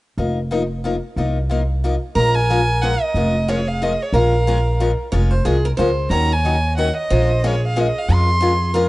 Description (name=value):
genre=acoustic string swing (jazz manouche)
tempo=182 BPM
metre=3/4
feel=swing 59% on 8ths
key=Bb minor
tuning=A4 = 444 Hz
part: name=picked steel-string acoustic guitar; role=accompaniment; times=0.2-8.9 s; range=Eb3 to Bb4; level=-22 LUFS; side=left 3 dB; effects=none
part: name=upright bass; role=bass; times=0.2-8.9 s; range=F1 to F2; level=-18 LUFS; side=equal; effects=none
part: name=warm violin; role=melody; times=2.2-8.8 s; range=Db5 to C6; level=-21 LUFS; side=right 2 dB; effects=none
part: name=picked steel-string acoustic guitar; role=second line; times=2.2-8.9 s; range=Ab4 to Db5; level=-24 LUFS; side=right 1 dB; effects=none
room=little or no reverb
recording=rough home demo mix, nothing above 10.6 kHz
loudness=-16 LUFS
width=side -18 dB against mid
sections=0.2-2.2 A section; 2.2-8.9 B section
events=none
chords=0.2 F7sus4; 2.2 Bbm7; 6.1 Ebm7; 7.1 Bbm9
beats=| 0.18 0.51 0.84 | 1.17 1.50 1.83 | 2.16 2.49 2.82 | 3.15 3.48 3.81 | 4.13 4.46 4.79 | 5.12 5.45 5.78 | 6.11 6.44 6.77 | 7.10 7.43 7.76 | 8.09 8.41 8.74